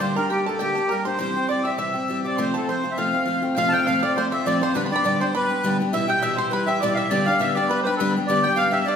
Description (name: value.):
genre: celtic folk, Celtic reel.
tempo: 203 BPM.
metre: 4/4.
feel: swing 53% on 8ths.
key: F major.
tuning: A4 = 439 Hz.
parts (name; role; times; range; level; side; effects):
accordion; melody; 0.0-9.0 s; G4 to A5; -23 LUFS; right 1 dB; none.
bluegrass banjo; second line; 0.0-9.0 s; D5 to C6; -31 LUFS; right 5 dB; none.
reedy mid whistle; second line; 0.0-9.0 s; G5 to G6; -28 LUFS; left 3 dB; none.
picked steel-string acoustic guitar; accompaniment; 0.0-9.0 s; E2 to G4; -24 LUFS; left 1 dB; none.
room: wet recital hall reverb, RT60 1.4 s.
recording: recorded in a church or concert hall.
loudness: -20 LUFS.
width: side -7 dB against mid.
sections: 0.0-3.6 A section; 3.6-9.0 B section.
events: none.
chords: 0.0 Gm; 1.2 C; 2.4 F; 4.8 G; 5.9 Em; 7.1 G.